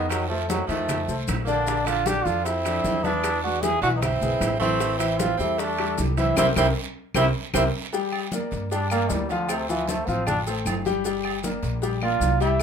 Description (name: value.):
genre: Afro-Cuban jazz.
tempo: 154 BPM.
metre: 4/4.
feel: straight.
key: unclear.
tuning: A4 = 440 Hz.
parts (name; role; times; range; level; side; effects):
brilliant trombone; melody; 0.0-12.6 s; C3 to G#4; -25 LUFS; right 2 dB; none.
bright tenor saxophone; second line; 0.0-7.6 s; Eb3 to E4; -29 LUFS; right 7 dB; none.
warm baby grand piano; accompaniment; 0.0-12.6 s; D3 to G5; -28 LUFS; left 5 dB; none.
upright bass; bass; 0.0-12.6 s; G1 to G2; -28 LUFS; equal; none.
bongos and cowbell; percussion; 0.1-12.6 s; none; -36 LUFS; left 2 dB; none.
claves; percussion; 0.1-12.6 s; none; -36 LUFS; left 5 dB; none.
congas; percussion; 0.1-12.6 s; none; -33 LUFS; left 1 dB; none.
guiro; percussion; 0.1-12.6 s; none; -40 LUFS; right 7 dB; none.
maracas; percussion; 0.1-12.6 s; none; -36 LUFS; left 10 dB; none.
timbales and agogo bells; percussion; 0.1-12.6 s; none; -34 LUFS; right 5 dB; none.
room: moderate club reverb, RT60 0.6 s.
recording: minimal, uncompressed stereo recording.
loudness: -22 LUFS.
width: side -7 dB against mid.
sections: 0.0-7.9 A section; 7.9-12.6 B section.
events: band accent 6.4-7.9; drum fill 7.2-7.9; trombone solo 7.9-12.6.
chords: 0.1 F7; 1.7 Bbmaj9; 3.2 E; 4.8 Am7; 6.4 C7; 7.9 Gm7; 9.5 Dm7; 11.0 Gm7.